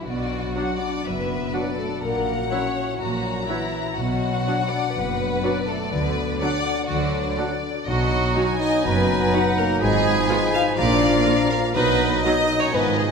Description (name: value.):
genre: cinematic, playful, whimsical film cue.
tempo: 123 BPM.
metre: 4/4.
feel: straight.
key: B minor.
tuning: A4 = 439 Hz.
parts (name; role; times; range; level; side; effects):
rich chamber violin section; second line; 0.0-13.1 s; E4 to F5; -26 LUFS; equal; none.
warm French horn section; sustained chords; 0.0-13.1 s; E3 to F4; -27 LUFS; left 2 dB; none.
concert harp; arpeggios; 0.0-13.1 s; Ab2 to F#5; -29 LUFS; left 6 dB; none.
rich chamber violin section; melody; 0.1-13.1 s; D5 to A#5; -28 LUFS; left 6 dB; none.
rich chamber double bass section; bass; 0.1-13.1 s; F#1 to D2; -30 LUFS; right 4 dB; none.
warm studio cello section; bass; 0.1-13.1 s; F#2 to D3; -29 LUFS; right 4 dB; none.
dark clarinet; second line; 0.6-13.1 s; D4 to F4; -31 LUFS; equal; none.
warm oboe; second line; 0.6-13.1 s; F#5 to Cb6; -32 LUFS; right 3 dB; none.
mellow bassoon; accompaniment; 0.6-13.1 s; F3 to F#3; -30 LUFS; right 1 dB; none.
rich chamber viola section; accompaniment; 0.6-12.3 s; F#3 to F4; -31 LUFS; right 3 dB; none.
room: wet scoring stage reverb, RT60 2.1 s.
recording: none.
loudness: -19 LUFS.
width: side -5 dB against mid.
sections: 0.1-13.1 A section.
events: none.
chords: 0.1 Bm; 2.0 F#7/A#; 4.0 Bm; 5.9 Bm/D; 7.9 Bmaj7; 9.8 Fm7b5/Ab; 10.8 Bb; 11.8 Bmaj7.